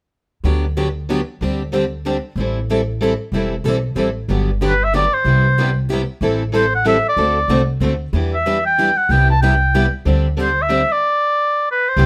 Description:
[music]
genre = acoustic string swing (jazz manouche)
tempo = 187 BPM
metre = 3/4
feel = swing 60% on 8ths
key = G major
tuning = A4 = 439 Hz
[part]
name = picked plugged-in steel-string acoustic guitar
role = accompaniment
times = 0.4-12.1 s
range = C3 to B4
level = -25 LUFS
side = equal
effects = none
[part]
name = picked steel-string acoustic guitar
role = accompaniment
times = 0.4-12.1 s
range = C3 to A4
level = -24 LUFS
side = equal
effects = none
[part]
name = upright bass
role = bass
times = 0.4-12.1 s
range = E1 to E2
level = -21 LUFS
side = equal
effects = none
[part]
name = warm oboe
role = melody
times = 4.7-12.1 s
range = B4 to A5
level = -18 LUFS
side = equal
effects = none
[sound]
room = light reverb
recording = none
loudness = -17 LUFS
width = mono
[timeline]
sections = 0.4-4.3 A section; 4.3-12.0 B section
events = none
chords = 0.4 Gmaj7/D; 1.4 D7sus4; 2.4 Am9; 4.3 Gmaj7; 5.3 Cmaj7; 6.2 Am7; 7.2 D7; 8.1 Em7; 9.1 Cmaj7; 10.1 D7sus4; 11.0 N.C.

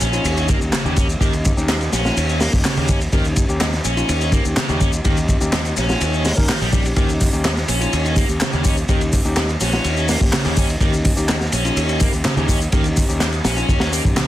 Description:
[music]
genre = breakbeat, breaks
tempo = 125 BPM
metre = 4/4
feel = straight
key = unclear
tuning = A4 = 440 Hz
[part]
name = overdriven electric guitar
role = riff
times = 0.0-14.3 s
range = Db3 to Db4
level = -24 LUFS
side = equal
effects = ping-pong delay
[part]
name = fuzz fingered electric bass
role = bass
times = 0.0-14.2 s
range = Bb1 to Eb2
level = -22 LUFS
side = equal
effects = overdrive
[part]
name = crunchy breakbeat drum kit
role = drums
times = 0.0-14.3 s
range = hi-hat, kick drum, ride cymbal, snare drum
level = -19 LUFS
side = equal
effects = none
[part]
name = garage drum kit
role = drums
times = 0.0-14.3 s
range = handclaps, hi-hat, shaker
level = -26 LUFS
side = left 1 dB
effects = none
[part]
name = sub drop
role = sound effects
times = 0.0-1.2 s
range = none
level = -34 LUFS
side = equal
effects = none
[part]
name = tine electric piano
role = stabs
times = 0.1-14.2 s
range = Db4 to Bb4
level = -27 LUFS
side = left 2 dB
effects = ping-pong delay
[sound]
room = small room reverb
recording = dense, heavily limited modern master, vinyl crackle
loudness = -16 LUFS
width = side -14 dB against mid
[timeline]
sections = 0.0-14.3 A section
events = impact 0.0-1.2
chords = 0.0 Eb7

